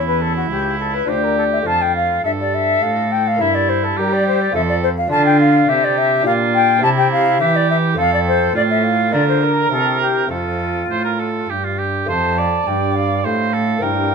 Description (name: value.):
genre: classical, baroque-style sonata movement with continuo.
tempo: 104 BPM.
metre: 3/4.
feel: straight.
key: F major from 5.1 s.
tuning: A4 = 440 Hz.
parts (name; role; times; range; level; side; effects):
concert flute; melody; 0.0-14.1 s; F4 to A5; -18 LUFS; left 3 dB; none.
bright oboe; second line; 0.0-14.1 s; E4 to D5; -21 LUFS; right 7 dB; none.
lute; accompaniment; 0.0-14.1 s; D2 to Bb4; -23 LUFS; left 2 dB; none.
rich cello; bass; 0.0-14.1 s; C#2 to G3; -20 LUFS; right 2 dB; none.
room: light reverb.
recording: minimal, uncompressed stereo recording.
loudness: -14 LUFS.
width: side -5 dB against mid.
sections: 0.0-12.1 A section; 12.1-14.1 B section.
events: none.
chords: 0.0 C#m7b5; 1.1 Dm; 1.7 F; 3.4 Edim/G; 4.5 F; 5.1 Dm; 6.3 Gm7/Bb; 6.8 C; 8.0 F; 8.6 F/A; 9.1 Bb/D; 9.7 C; 10.3 F.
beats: 0.50 1.08 | 1.66 2.25 2.83 | 3.40 3.98 4.55 | 5.12 5.70 6.26 | 6.83 7.41 7.98 | 8.55 9.13 9.72 | 10.31 10.90 11.50 | 12.09 12.68 13.25 | 13.83.